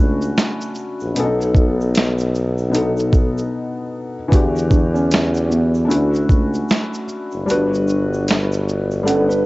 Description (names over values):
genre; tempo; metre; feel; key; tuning
lo-fi hip hop; 76 BPM; 4/4; swing 60% on 16ths; unclear; A4 = 441 Hz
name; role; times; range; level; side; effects
felt-muted upright piano; melody; 0.0-7.0 s; A3 to D4; -22 LUFS; right 1 dB; low-pass filter, tape echo
felt-muted upright piano; accompaniment; 0.0-9.5 s; B2 to F#5; -21 LUFS; left 2 dB; cassette tape, low-pass filter
warm tuba; bass; 0.0-9.5 s; F#1 to E2; -20 LUFS; equal; none
dusty soul sampler-style drum kit; drums; 0.2-9.5 s; hi-hat, kick drum, shaker, snare drum; -17 LUFS; equal; cassette tape
tube shaker; percussion; 0.2-9.4 s; none; -45 LUFS; right 4 dB; none
mellow tine electric piano; second line; 9.1-9.5 s; C#4 to B4; -18 LUFS; right 2 dB; medium stereo tremolo, low-pass filter, cassette tape
room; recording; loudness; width
small room ambience; home recording on cassette, nothing above 7.8 kHz; -16 LUFS; side -20 dB against mid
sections
0.0-9.5 A section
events
break 3.5-4.3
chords
0.0 Dmaj9; 1.2 B7; 4.3 Em9; 5.9 Dmaj9; 7.5 Gmaj7